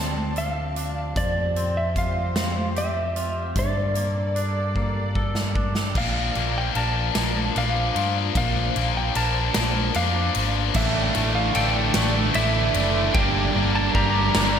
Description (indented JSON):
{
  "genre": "post-rock",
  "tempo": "50 BPM (dotted quarters)",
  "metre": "6/8",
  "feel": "straight",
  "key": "unclear",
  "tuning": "A4 = 441 Hz",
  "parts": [
    { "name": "electric slide guitar", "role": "melody", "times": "0.0-14.6 s", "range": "D5 to Bb5", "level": "-27 LUFS", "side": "equal", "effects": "tape echo" },
    { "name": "rich studio string section", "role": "sustained chords", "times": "0.0-14.6 s", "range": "E3 to A5", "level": "-34 LUFS", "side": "equal", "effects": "none" },
    { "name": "twangy electric guitar", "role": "arpeggios", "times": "0.0-14.6 s", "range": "G2 to Bb4", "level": "-32 LUFS", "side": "left 1 dB", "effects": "wide subtle chorus, tape echo" },
    { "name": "picked electric bass", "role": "bass", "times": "0.0-14.6 s", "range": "F#1 to G2", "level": "-26 LUFS", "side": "equal", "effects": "none" },
    { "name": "big rock drum kit", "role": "drums", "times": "0.4-14.5 s", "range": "crash cymbal, hi-hat, kick drum, ride cymbal, snare drum", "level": "-28 LUFS", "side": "equal", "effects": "none" },
    { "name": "tight distorted guitar", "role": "riff", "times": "6.0-14.6 s", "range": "G2 to D4", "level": "-26 LUFS", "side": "left 11 dB", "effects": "distortion" },
    { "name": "overdriven electric guitar", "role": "riff", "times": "10.8-14.6 s", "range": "G2 to D4", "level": "-26 LUFS", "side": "right 10 dB", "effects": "none" }
  ],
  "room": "moderate lush hall reverb, RT60 1.9 s, small room ambience",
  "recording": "dreamy mix soaked in reverb",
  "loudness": "-20 LUFS",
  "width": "side -8 dB against mid",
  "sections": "0.0-6.0 A section; 6.0-14.6 B section",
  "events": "drum fill 4.8-6.0; build-up 6.0-14.6",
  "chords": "0.0 Dm7; 1.2 Fsus2; 3.6 Gmadd9; 6.0 Bb; 10.8 Asus4; 13.2 Gm"
}